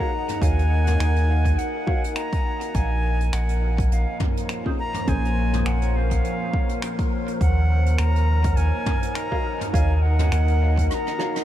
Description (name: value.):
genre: ambient dub.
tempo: 103 BPM.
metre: 4/4.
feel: swing 56% on 16ths.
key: unclear.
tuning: A4 = 440 Hz.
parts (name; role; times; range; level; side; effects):
bright wooden flute; melody; 0.0-11.4 s; F5 to Db6; -30 LUFS; equal; dub echo.
deep dark ambient pad; sustained chords; 0.0-11.4 s; F3 to Gb5; -29 LUFS; left 1 dB; chorus, built-in reverb.
mellow electric guitar; stabs; 0.0-5.3, 9.3-11.3 s; Db4 to F5; -34 LUFS; right 1 dB; analog chorus, dub echo.
electronic kick drum; drums; 0.0-10.9 s; none; -25 LUFS; equal; overdrive.
soft brush drum kit; drums; 0.3-11.4 s; finger snaps, hi-hat, rim click, toms; -33 LUFS; equal; dub echo.
warm sub bass; bass; 0.4-10.9 s; Bb1 to Eb2; -20 LUFS; equal; none.
wind-like tuned noise texture; texture; 3.4-11.4 s; Bb4; -36 LUFS; right 2 dB; built-in reverb.
room: light reverb, studio reverb.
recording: none.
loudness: -20 LUFS.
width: side -12 dB against mid.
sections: 0.0-11.4 A section.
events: break 10.9-11.4; drum fill 10.9-11.4.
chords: 0.0 Ebm7; 2.7 Bbm7; 7.4 Ebm7.